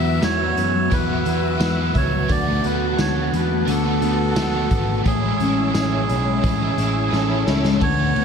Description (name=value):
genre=dream pop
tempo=87 BPM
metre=4/4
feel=straight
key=unclear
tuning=A4 = 440 Hz
part: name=melodica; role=melody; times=0.0-8.2 s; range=G#4 to E5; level=-25 LUFS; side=right 3 dB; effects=ping-pong delay
part: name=biting overdriven guitar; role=accompaniment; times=0.0-8.2 s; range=E2 to F#4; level=-27 LUFS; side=right 4 dB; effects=tremolo, analog chorus
part: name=mellow tonewheel organ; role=sustained chords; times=0.0-8.2 s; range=F#4 to E6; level=-28 LUFS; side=right 2 dB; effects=chorus vibrato, slow rotary speaker
part: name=mellow electric guitar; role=arpeggios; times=0.0-8.2 s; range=A2 to F#4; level=-23 LUFS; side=left 4 dB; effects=lush chorus, ping-pong delay
part: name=vintage muted picked electric bass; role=bass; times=0.0-8.2 s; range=G#1 to F#2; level=-23 LUFS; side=right 1 dB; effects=none
part: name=raw garage drum kit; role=drums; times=0.2-8.2 s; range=hi-hat, kick drum, ride cymbal, snare drum, tambourine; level=-25 LUFS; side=equal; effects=none
part: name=shimmering bell with halo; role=texture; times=1.3-2.6, 7.8-8.2 s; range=B4 to A5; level=-35 LUFS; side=left 1 dB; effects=ensemble chorus, ping-pong delay
room=light reverb, studio reverb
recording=none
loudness=-17 LUFS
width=side -6 dB against mid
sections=0.0-7.8 A section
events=drum fill 7.1-7.8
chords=0.0 Esus2; 2.3 D6; 5.1 Amaj7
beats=0.23 0.92 1.61 | 2.30 2.99 3.68 4.37 | 5.06 5.75 6.43 7.12 | 7.81